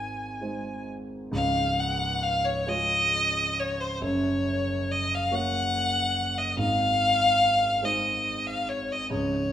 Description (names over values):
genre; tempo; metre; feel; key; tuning
classical, romantic duo for violin and grand piano; 44-48 BPM (dotted quarters); 6/8; rubato; Db major; A4 = 440 Hz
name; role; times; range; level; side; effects
clear violin; melody; 0.0-9.5 s; C5 to Ab5; -25 LUFS; left 1 dB; none
dark concert grand piano; accompaniment; 0.0-9.5 s; Db1 to Db5; -30 LUFS; right 1 dB; none
room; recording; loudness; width
moderate recital hall reverb, RT60 1.4 s; none; -23 LUFS; side -10 dB against mid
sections
0.0-1.3 A section; 1.3-9.5 B section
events
none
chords
0.0 Ab; 1.3 Db; 4.0 Gb; 6.6 Ab